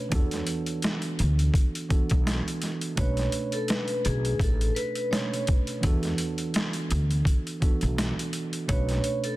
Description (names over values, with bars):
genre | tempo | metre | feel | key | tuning
hip hop, boom-bap hip-hop | 84 BPM | 4/4 | swing 56% on 16ths | unclear | A4 = 440 Hz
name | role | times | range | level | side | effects
tine electric piano | accompaniment | 0.0-9.4 s | B2 to B4 | -32 LUFS | right 2 dB | high-pass filter, low-pass filter
upright bass | bass | 0.1-9.0 s | A1 to E2 | -27 LUFS | equal | none
boom bap sampler-style drum kit | drums | 0.1-9.4 s | hi-hat, kick drum, snare drum | -27 LUFS | equal | overdrive
vibraphone with soft mallets | melody | 3.0-9.4 s | G#4 to C#5 | -32 LUFS | equal | high-pass filter, low-pass filter, tape echo
room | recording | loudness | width
small room ambience | dense, heavily limited modern master | -24 LUFS | side -18 dB against mid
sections
0.0-9.4 A section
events
none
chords
0.1 E9sus4; 3.0 Bm9; 5.8 E9sus4; 8.7 Bm9